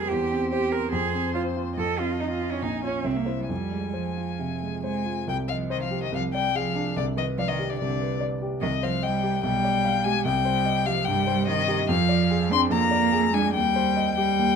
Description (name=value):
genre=quick classical-period movement for piano trio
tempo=144 BPM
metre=4/4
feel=rubato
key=F minor, C minor from 5.3 s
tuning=A4 = 440 Hz
part: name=warm violin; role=melody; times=0.0-14.6 s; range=C5 to C6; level=-27 LUFS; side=left 10 dB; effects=none
part: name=rich cello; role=second line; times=0.0-14.6 s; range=D3 to Bb4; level=-27 LUFS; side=right 6 dB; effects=none
part: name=warm concert grand piano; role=accompaniment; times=0.0-14.6 s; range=Bb1 to F5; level=-27 LUFS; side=equal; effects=none
room=light reverb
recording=none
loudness=-22 LUFS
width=side -6 dB against mid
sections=0.0-5.3 A section; 5.3-14.6 B section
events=none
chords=0.1 C/E; 0.9 Fm; 1.8 F5; 2.6 Bbm7; 3.1 C7; 3.5 Fm; 5.3 Cm; 6.1 Dm7b5/C; 7.0 G/C; 8.6 Cm; 9.4 G7/B; 10.2 Cm; 11.9 Ddim/F; 13.5 Cm/Eb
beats=| 0.10 0.52 0.93 1.35 | 1.78 2.21 2.63 3.05 | 3.50 3.95 4.40 4.84 | 5.28 5.70 6.12 6.54 | 6.96 7.38 7.79 8.21 | 8.62 9.03 9.44 9.84 | 10.25 10.66 11.06 11.48 | 11.89 12.31 12.72 13.13 | 13.54 13.96 14.37